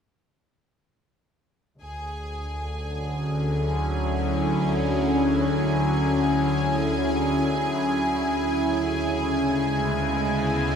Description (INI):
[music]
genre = ambient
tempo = free time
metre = none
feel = none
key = D lydian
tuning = A4 = 440 Hz
[part]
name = evolving wavetable pad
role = sustained chords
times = 2.8-10.8 s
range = C#3 to G#5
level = -23 LUFS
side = equal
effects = phaser, built-in reverb
[part]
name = warm studio double bass section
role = bass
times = 1.8-10.8 s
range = D2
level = -32 LUFS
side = equal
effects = none
[part]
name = clear studio violin section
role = texture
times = 1.8-10.8 s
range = G#4 to G#5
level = -31 LUFS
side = equal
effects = none
[sound]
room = wet lush hall reverb, RT60 2.7 s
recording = dreamy mix soaked in reverb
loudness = -22 LUFS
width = side -7 dB against mid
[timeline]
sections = 1.8-10.8 A section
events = none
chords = 1.8 Dmaj9#11; 8.3 C#m7/D